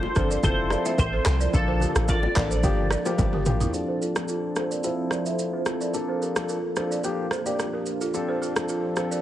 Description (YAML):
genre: afrobeats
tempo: 109 BPM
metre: 4/4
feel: straight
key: D minor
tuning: A4 = 439 Hz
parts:
  - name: twelve-string electric guitar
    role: melody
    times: 0.0-3.2 s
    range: A4 to D5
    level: -31 LUFS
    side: right 1 dB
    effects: ensemble chorus, tape echo
  - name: deep dark ambient pad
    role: sustained chords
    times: 0.0-9.2 s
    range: F3 to A4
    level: -33 LUFS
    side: right 2 dB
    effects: chorus, built-in reverb, low-pass filter
  - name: punchy sub bass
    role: bass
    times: 0.0-3.7 s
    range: F1 to C2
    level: -26 LUFS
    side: equal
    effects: none
  - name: bongos and congas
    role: percussion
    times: 0.0-3.6 s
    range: none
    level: -34 LUFS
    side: left 4 dB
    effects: none
  - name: warm concert grand piano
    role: accompaniment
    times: 0.2-9.2 s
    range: F3 to A4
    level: -29 LUFS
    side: left 3 dB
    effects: low-pass filter
  - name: balafon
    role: riff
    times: 0.2-9.2 s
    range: E4 to E5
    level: -31 LUFS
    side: right 3 dB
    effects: low-pass filter, tape echo
  - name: deep house drum kit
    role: drums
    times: 0.2-9.2 s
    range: handclaps, kick drum, rim click, shaker, toms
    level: -27 LUFS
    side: equal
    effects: vintage 12-bit sampler grit
room: light reverb, digital ambience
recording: heavily compressed radio sound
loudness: -22 LUFS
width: side -12 dB against mid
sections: 0.0-3.7 A section; 3.7-9.2 B section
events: drum fill 3.2-3.7; filter sweep 3.7-9.2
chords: 0.4 Fmaj7; 1.5 Bbmaj7; 2.6 Gm7; 3.7 Dm7; 4.8 Fmaj7; 5.9 Bbmaj7; 8.1 Dm7